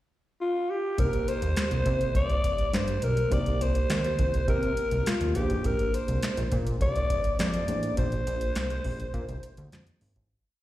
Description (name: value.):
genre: early-eighties boogie funk.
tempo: 103 BPM.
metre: 4/4.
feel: straight.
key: C minor.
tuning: A4 = 440 Hz.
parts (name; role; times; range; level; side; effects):
breathy alto saxophone; melody; 0.4-9.7 s; F4 to D5; -29 LUFS; left 1 dB; slapback echo, analog delay.
mellow tine electric piano; accompaniment; 1.0-10.0 s; Bb3 to C5; -36 LUFS; equal; medium stereo tremolo, slapback echo.
fat analog bass; bass; 1.0-10.3 s; Ab1 to C3; -29 LUFS; equal; none.
booming analog drum machine; drums; 1.0-10.4 s; handclaps, hi-hat, kick drum, snare drum; -29 LUFS; equal; overdrive.
room: little or no reverb.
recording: live gig heard through the venue's PA, recital hall reverb.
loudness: -25 LUFS.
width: side -14 dB against mid.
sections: 0.0-1.0 pickup bar; 1.0-10.3 verse.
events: fade-out 8.0-10.3.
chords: 0.0 N.C.; 1.0 Cm7; 5.4 Bb9.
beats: 0.40 | 0.98 1.57 2.15 2.73 | 3.31 3.90 4.48 5.06 | 5.64 6.23 6.81 7.39 | 7.98 8.56 9.14 9.72.